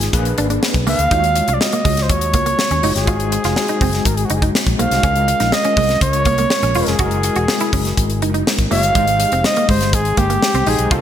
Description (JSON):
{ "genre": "polished 1980s jazz-funk pop", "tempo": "122 BPM", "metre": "4/4", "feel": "straight", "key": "unclear", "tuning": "A4 = 440 Hz", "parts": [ { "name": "warm flugelhorn", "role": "melody", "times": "0.0-11.0 s", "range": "Gb4 to F5", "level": "-19 LUFS", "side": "right 1 dB", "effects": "none" }, { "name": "overdriven tine electric piano", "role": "accompaniment", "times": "0.0-11.0 s", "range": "Ab3 to Db5", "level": "-23 LUFS", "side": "left 4 dB", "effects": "medium tremolo, ensemble chorus" }, { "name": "fretless electric bass", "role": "bass", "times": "0.0-11.0 s", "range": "E1 to Eb2", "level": "-20 LUFS", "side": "equal", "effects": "none" }, { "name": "crisp fusion drum kit", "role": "drums", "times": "0.0-11.0 s", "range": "hi-hat, kick drum, snare drum", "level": "-19 LUFS", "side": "left 1 dB", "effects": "none" }, { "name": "semi-hollow electric guitar", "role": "riff", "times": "0.1-11.0 s", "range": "Ab3 to Gb4", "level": "-24 LUFS", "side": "right 4 dB", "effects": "wide subtle chorus" } ], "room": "moderate lush hall reverb, RT60 1.7 s, studio ambience", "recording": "bright 1980s-style digital production", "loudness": "-14 LUFS", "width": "side -10 dB against mid", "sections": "0.0-11.0 A section", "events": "none", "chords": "0.1 Bb7b9; 1.1 Ebm11; 3.1 Ab7; 5.0 Db6; 7.0 Gb9; 9.0 Abmaj7" }